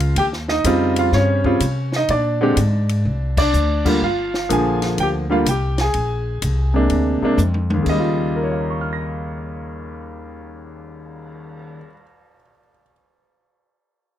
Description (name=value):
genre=jazz piano trio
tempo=125 BPM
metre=4/4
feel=swing 66% on 8ths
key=Eb mixolydian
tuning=A4 = 441 Hz
part: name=clear concert grand piano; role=melody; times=0.0-12.9 s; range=Eb2 to Bb6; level=-20 LUFS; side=equal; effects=none
part: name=upright bass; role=bass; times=0.0-11.9 s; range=G1 to C3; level=-21 LUFS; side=equal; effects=none
part: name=compact cocktail drum kit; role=drums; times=0.0-11.6 s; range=crash cymbal, cymbal swell, hi-hat, kick drum, ride cymbal, snare drum, toms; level=-26 LUFS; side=left 1 dB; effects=none
room=light reverb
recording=none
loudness=-16 LUFS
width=side -11 dB against mid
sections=0.0-4.0 A section; 4.0-7.9 B section; 7.9-11.7 C section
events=drum fill 3.1-3.5, 7.4-7.9; band accent 3.3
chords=0.2 Eb13; 2.1 Bb9; 4.0 Gm7; 5.9 Bb9; 7.9 Eb9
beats=| 0.17 0.65 1.14 1.62 | 2.10 2.58 3.06 3.54 | 4.02 4.50 4.98 5.46 | 5.95 6.43 6.91 7.39 | 7.87 8.35 8.83 9.31 | 9.79 10.27 10.75 11.23